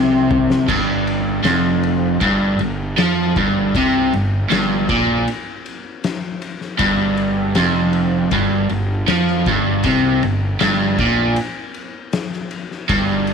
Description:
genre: blues rock power trio and southern rock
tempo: 79 BPM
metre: 4/4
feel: straight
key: G minor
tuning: A4 = 440 Hz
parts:
  - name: overdriven electric guitar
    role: riff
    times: 0.0-13.3 s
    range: F2 to F3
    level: -16 LUFS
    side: right 1 dB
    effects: none
  - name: fuzz fingered electric bass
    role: bass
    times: 0.0-13.3 s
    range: F1 to F2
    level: -24 LUFS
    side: equal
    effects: overdrive
  - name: oversized low-tuned drum kit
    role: drums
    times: 0.3-13.3 s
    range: crash cymbal, kick drum, ride cymbal, snare drum, toms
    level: -24 LUFS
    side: left 4 dB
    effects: none
room: light reverb, small room ambience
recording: 1960s-style stereo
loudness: -15 LUFS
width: side -6 dB against mid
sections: 0.7-13.3 A section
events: drum fill 0.0-0.7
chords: none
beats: | 0.69 1.45 2.21 2.98 | 3.74 4.51 5.27 6.03 | 6.80 7.56 8.32 9.08 | 9.85 10.61 11.37 12.13 | 12.89

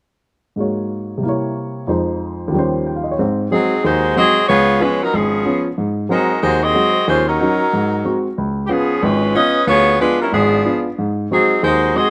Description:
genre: jazz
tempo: 185 BPM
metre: 4/4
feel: swing 63% on 8ths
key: Ab mixolydian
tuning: A4 = 440 Hz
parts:
  - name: dark baby grand piano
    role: accompaniment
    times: 0.6-12.1 s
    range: Ab1 to G5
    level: -20 LUFS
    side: equal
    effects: none
  - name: warm saxophone section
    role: melody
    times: 3.5-12.1 s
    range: F3 to Eb5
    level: -17 LUFS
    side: equal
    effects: none
room: little or no reverb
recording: recorded outdoors, with no room sound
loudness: -17 LUFS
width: mono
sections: 0.6-3.2 A section; 3.2-12.1 B section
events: none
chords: 0.6 Ab7sus4; 1.2 C7b9; 1.9 Fm7; 2.5 Eb13; 3.2 Ab7; 4.5 Db7; 5.8 Ab7; 7.1 Ebm7; 7.7 Ab7; 8.4 Db7; 9.7 Ddim7; 11.0 Ab7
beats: | 0.57 0.90 1.22 1.55 | 1.88 2.20 2.53 2.85 | 3.18 3.50 3.83 4.15 | 4.48 4.80 5.13 5.45 | 5.78 6.10 6.43 6.75 | 7.08 7.40 7.72 8.05 | 8.37 8.70 9.02 9.35 | 9.67 10.00 10.32 10.65 | 10.97 11.30 11.62 11.95

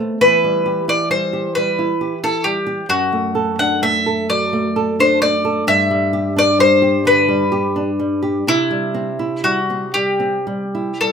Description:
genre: romantic duo for mandolin and classical guitar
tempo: 44 BPM (dotted quarters)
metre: 6/8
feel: uneven beats, rubato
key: E minor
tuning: A4 = 444 Hz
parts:
  - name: bowl-back mandolin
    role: melody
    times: 0.0-11.1 s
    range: E4 to F#5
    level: -16 LUFS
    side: left 1 dB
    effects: none
  - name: nylon-string guitar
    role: accompaniment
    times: 0.0-11.1 s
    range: F#2 to A4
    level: -20 LUFS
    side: right 1 dB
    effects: none
room: wet small room ambience, RT60 0.5 s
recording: rough home demo mix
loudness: -15 LUFS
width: side -6 dB against mid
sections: 0.0-11.1 A section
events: none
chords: 0.2 Em; 2.9 D/F#; 5.7 G; 8.5 C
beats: | 0.21 1.55 | 2.88 4.29 | 5.67 7.05 | 8.47 9.94

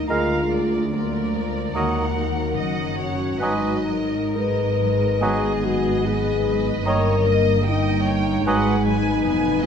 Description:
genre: classical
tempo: 60-79 BPM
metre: 4/4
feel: rubato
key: Eb minor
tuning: A4 = 440 Hz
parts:
  - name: muted studio violin section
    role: melody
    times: 0.0-9.7 s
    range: D5 to Ab5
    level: -31 LUFS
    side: right 2 dB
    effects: none
  - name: muted studio violin section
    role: second line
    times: 0.0-9.7 s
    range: Ab4 to Eb5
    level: -31 LUFS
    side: equal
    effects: none
  - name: muted studio viola section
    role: accompaniment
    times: 0.0-9.7 s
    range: Eb3 to Cb4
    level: -30 LUFS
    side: right 3 dB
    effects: none
  - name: mellow French horn section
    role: sustained chords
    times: 0.0-9.7 s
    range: Bb3 to Cb5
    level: -24 LUFS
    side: left 5 dB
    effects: none
  - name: concert harp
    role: arpeggios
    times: 0.0-9.7 s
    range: G2 to Bb4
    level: -30 LUFS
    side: left 10 dB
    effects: none
  - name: muted chamber double bass section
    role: bass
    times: 0.0-9.7 s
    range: F1 to Eb2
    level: -27 LUFS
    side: right 4 dB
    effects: none
  - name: muted symphonic cello section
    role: bass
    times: 0.0-9.7 s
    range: D2 to Ab2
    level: -27 LUFS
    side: right 3 dB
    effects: none
  - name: mellow clarinet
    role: second line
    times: 0.1-8.8 s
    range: Bb4 to Db5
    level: -31 LUFS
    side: left 1 dB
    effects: none
  - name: mellow silver concert flute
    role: second line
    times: 0.1-8.8 s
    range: Ab5 to Bb5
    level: -31 LUFS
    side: left 1 dB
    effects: none
  - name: warm cor anglais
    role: second line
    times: 0.1-8.8 s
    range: Eb5 to F5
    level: -30 LUFS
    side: right 3 dB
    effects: none
  - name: clear bassoon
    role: accompaniment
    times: 0.1-8.8 s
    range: Eb3 to Ab3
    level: -29 LUFS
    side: right 3 dB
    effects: none
room: moderate scoring stage reverb, RT60 1.5 s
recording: none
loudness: -19 LUFS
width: side -7 dB against mid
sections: 0.0-9.7 A section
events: none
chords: 0.1 Bb7/D; 1.8 Ebm; 3.4 Abm7; 6.9 Eb7/G; 8.5 Abm7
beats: | 0.10 0.93 1.75 2.57 | 3.41 4.36 5.22 6.05 | 6.86 7.67 8.47 9.25

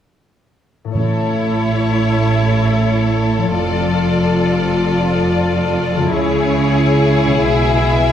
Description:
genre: cinematic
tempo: 93 BPM (dotted quarters)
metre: 12/8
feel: straight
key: A major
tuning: A4 = 445 Hz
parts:
  - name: concert harp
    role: arpeggios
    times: 0.8-8.1 s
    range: A2 to E5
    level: -22 LUFS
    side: left 5 dB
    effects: none
  - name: timpani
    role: percussion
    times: 0.9-1.6 s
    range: A2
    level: -23 LUFS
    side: right 2 dB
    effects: none
  - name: rich symphonic violin section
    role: melody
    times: 1.0-8.1 s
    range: C#5 to E5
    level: -23 LUFS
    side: left 5 dB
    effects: none
  - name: clear symphonic violin section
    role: second line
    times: 1.0-8.1 s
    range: G#4 to A4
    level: -22 LUFS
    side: left 3 dB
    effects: none
  - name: clear symphonic viola section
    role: accompaniment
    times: 1.0-8.1 s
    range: E4 to F4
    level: -20 LUFS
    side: equal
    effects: none
  - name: clear symphonic cello section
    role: bass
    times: 1.0-8.1 s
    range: F2 to C#3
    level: -20 LUFS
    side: right 2 dB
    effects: none
  - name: dark symphonic double bass section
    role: bass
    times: 1.0-8.1 s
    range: F1 to C#2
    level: -20 LUFS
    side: right 3 dB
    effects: none
room: wet scoring stage reverb, RT60 1.6 s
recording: none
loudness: -13 LUFS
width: side -10 dB against mid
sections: 1.0-8.1 A section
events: none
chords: 1.0 A; 3.6 F6; 6.1 C#m; 7.4 E/B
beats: | 0.96 1.61 2.27 2.91 | 3.56 4.20 4.84 5.49 | 6.14 6.78 7.43 8.08

